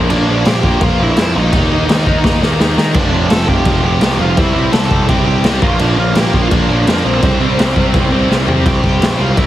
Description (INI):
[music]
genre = punk rock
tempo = 168 BPM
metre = 4/4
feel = straight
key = unclear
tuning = A4 = 439 Hz
[part]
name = tight distorted guitar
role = riff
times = 0.0-9.5 s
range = F2 to Eb4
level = -18 LUFS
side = left 1 dB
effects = distortion
[part]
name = fuzz picked electric bass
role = bass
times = 0.0-9.5 s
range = F1 to Eb3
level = -16 LUFS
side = equal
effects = overdrive
[part]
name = biting lead guitar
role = melody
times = 0.1-9.5 s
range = C4 to A5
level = -19 LUFS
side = right 2 dB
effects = overdrive, digital delay
[part]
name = raw garage drum kit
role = drums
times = 0.1-9.5 s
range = crash cymbal, kick drum, snare drum, toms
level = -15 LUFS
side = equal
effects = none
[part]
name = heavy high-gain guitar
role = riff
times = 2.9-8.7 s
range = F2 to C4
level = -22 LUFS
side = right 2 dB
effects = distortion
[sound]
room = little or no reverb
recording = heavily compressed radio sound, multiband compression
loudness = -10 LUFS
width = side -13 dB against mid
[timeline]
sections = 0.0-8.7 A section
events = drum fill 2.2-2.9, 8.3-8.7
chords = 0.0 Bb; 1.5 Eb5; 2.9 F; 4.4 C; 5.6 Bb; 7.2 C5; 8.7 C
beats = | 0.10 0.45 0.81 1.17 | 1.52 1.88 2.23 2.59 | 2.95 3.31 3.66 4.02 | 4.37 4.73 5.09 5.45 | 5.80 6.16 6.51 6.87 | 7.23 7.59 7.94 8.30 | 8.66 9.02 9.37